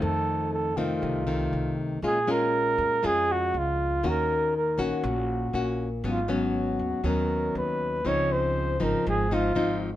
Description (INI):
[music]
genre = bossa nova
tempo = 120 BPM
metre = 4/4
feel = straight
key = Db major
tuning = A4 = 440 Hz
[part]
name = breathy flugelhorn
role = melody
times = 0.0-9.8 s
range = F4 to Db5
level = -27 LUFS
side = right 2 dB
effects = none
[part]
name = nylon-string guitar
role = accompaniment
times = 0.0-10.0 s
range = F2 to Gb4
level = -28 LUFS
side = left 3 dB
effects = none
[part]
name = upright bass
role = bass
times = 0.0-10.0 s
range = Ab1 to F2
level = -32 LUFS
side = right 1 dB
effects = none
[sound]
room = light reverb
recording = minimal, uncompressed stereo recording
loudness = -24 LUFS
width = side -13 dB against mid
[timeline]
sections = 0.0-10.0 A section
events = none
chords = 0.0 F7; 2.0 Bbm7; 4.0 Ebm7; 6.0 Abm11; 8.1 Dbmaj9